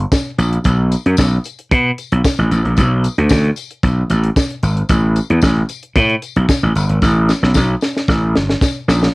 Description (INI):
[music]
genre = early-eighties boogie funk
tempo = 113 BPM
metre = 4/4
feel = straight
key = B minor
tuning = A4 = 440 Hz
[part]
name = gritty slap bass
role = bass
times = 0.0-9.1 s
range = G1 to B2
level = -13 LUFS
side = equal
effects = overdrive
[part]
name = tight funk drum kit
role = drums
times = 0.1-9.1 s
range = hi-hat, kick drum, snare drum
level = -17 LUFS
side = equal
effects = none
[part]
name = tambourine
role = percussion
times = 0.1-9.0 s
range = none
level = -30 LUFS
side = left 9 dB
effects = none
[sound]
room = little or no reverb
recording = home recording on cassette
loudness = -13 LUFS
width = side -26 dB against mid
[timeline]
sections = 0.0-9.1 A section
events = drum fill 7.0-9.1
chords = none